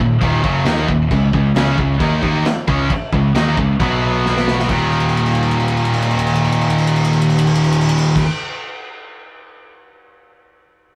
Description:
heavy metal; 134 BPM; 4/4; straight; Eb minor; A4 = 437 Hz
scooped high-gain guitar; riff; 0.0-8.3 s; Eb2 to Eb4; -22 LUFS; equal; distortion
tight distorted guitar; riff; 0.0-8.3 s; Eb2 to Eb4; -21 LUFS; equal; distortion
modern bright picked electric bass; bass; 0.0-8.2 s; Eb1 to Eb2; -21 LUFS; equal
modern studio drum kit; drums; 0.2-9.7 s; china cymbal, crash cymbal, kick drum, ride cymbal, snare drum; -24 LUFS; equal
moderate studio reverb, RT60 0.6 s; rough rehearsal-room recording; -16 LUFS; mono
0.0-4.7 A section; 4.7-8.3 B section
drum fill 4.2-4.7, 4.9-8.2
0.0 Ebm; 1.1 Db5; 3.8 B5; 4.7 Eb5

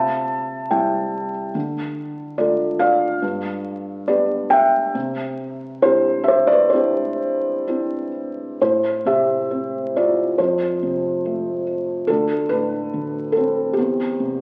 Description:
classical, lyrical solo piano; 63-72 BPM; 4/4; rubato; C major, A minor from 8.6 s; A4 = 443 Hz
felt-muted upright piano; solo; 0.0-14.4 s; D2 to A5; -21 LUFS; equal
wet recital hall reverb, RT60 1.5 s; very old 78 rpm record, vinyl crackle; -21 LUFS; mono
0.0-8.6 A section; 8.6-14.4 B section
0.0 C; 1.5 Dm; 3.2 G; 5.0 Cadd9; 8.6 Am; 10.4 F; 12.1 D5; 13.8 C/E

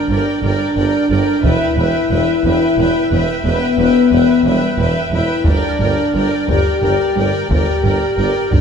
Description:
cinematic, epic orchestral film score; 59 BPM (dotted quarters); 6/8; straight; A4 = 440 Hz
rich chamber violin section; melody; 0.0-8.6 s; G5; -28 LUFS; left 5 dB
rich symphonic violin section; second line; 0.0-8.6 s; D5 to E5; -25 LUFS; equal
rich symphonic viola section; accompaniment; 0.0-8.6 s; Bb4 to B4; -23 LUFS; right 2 dB
mellow French horn section; sustained chords; 0.0-8.6 s; G3 to G4; -16 LUFS; left 3 dB
clear tuba; bass; 0.1-8.6 s; E1 to G1; -23 LUFS; right 5 dB
rich symphonic double bass section; bass; 0.1-8.6 s; E1 to G1; -22 LUFS; right 3 dB
warm symphonic cello section; bass; 0.1-8.6 s; E2 to G2; -23 LUFS; right 2 dB
taiko ensemble; drums; 1.4-8.6 s; -18 LUFS; equal
wet scoring stage reverb, RT60 1.6 s; dark, warm production; -13 LUFS; side -6 dB against mid
0.0-8.6 A section
0.0 Gm; 1.4 Em; 5.5 Gm

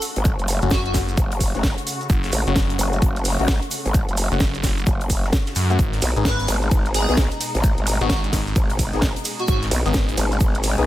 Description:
bass house; 130 BPM; 4/4; swing 62% on 16ths; F# dorian; A4 = 438 Hz
rich studio string section; sustained chords; 0.0-10.9 s; B2 to F#4; -32 LUFS; left 2 dB; sidechain pumping, low-pass filter
big rock drum kit; drums; 0.0-10.8 s; hi-hat, shaker, snare drum; -36 LUFS; left 3 dB; high-pass filter on hats, high-pass filter on snare, high-pass filter on perc, high-pass filter on room
house drum kit; drums; 0.0-10.8 s; hi-hat, ride cymbal, snare drum; -27 LUFS; right 1 dB; overdrive
maracas; percussion; 0.0-10.9 s; -35 LUFS; right 4 dB
growl bass; bass; 0.2-10.9 s; F#1 to B1; -22 LUFS; equal; chorus, overdrive, sidechain pumping
electronic kick drum; drums; 0.3-10.5 s; -20 LUFS; equal
percussive organ stab; stabs; 0.6-10.9 s; A3 to G#4; -28 LUFS; left 4 dB; ensemble chorus, sidechain pumping, ping-pong delay
phased detuned saw bass; bass; 0.6-10.2 s; F#1 to F#2; -23 LUFS; equal; phaser, sidechain pumping
airy dreamy lead; melody; 0.7-0.9, 6.3-9.6 s; F#4 to B4; -29 LUFS; equal; chorus, vintage 12-bit sampler grit, ping-pong delay
small room ambience; -18 LUFS; side -14 dB against mid
0.0-10.9 A section
0.0 F#m; 5.8 G#m

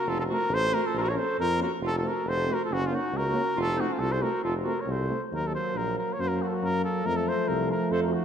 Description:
balkan folk; 138 BPM; 2/4; swing 55% on 16ths; F phrygian dominant; A4 = 439 Hz
mellow trumpet; melody; 0.0-8.2 s; F4 to Db5; -29 LUFS; left 1 dB
warm clarinet; second line; 0.0-5.2, 7.9-8.2 s; Db4 to Bb4; -32 LUFS; right 3 dB
warm tuba; bass; 0.1-8.1 s; F1 to Gb2; -32 LUFS; equal
mellow euphonium; accompaniment; 0.3-8.2 s; F3 to Bb3; -34 LUFS; right 3 dB
warm euphonium; accompaniment; 0.3-8.2 s; A3 to Db4; -34 LUFS; left 4 dB
wet concert hall reverb, RT60 2.0 s; -25 LUFS; side -8 dB against mid
0.0-5.3 A section; 5.3-8.2 B section
0.1 F; 0.9 Bbm; 1.8 F; 2.7 Gb; 3.6 F; 5.3 Ebm; 6.2 Gb; 7.0 F

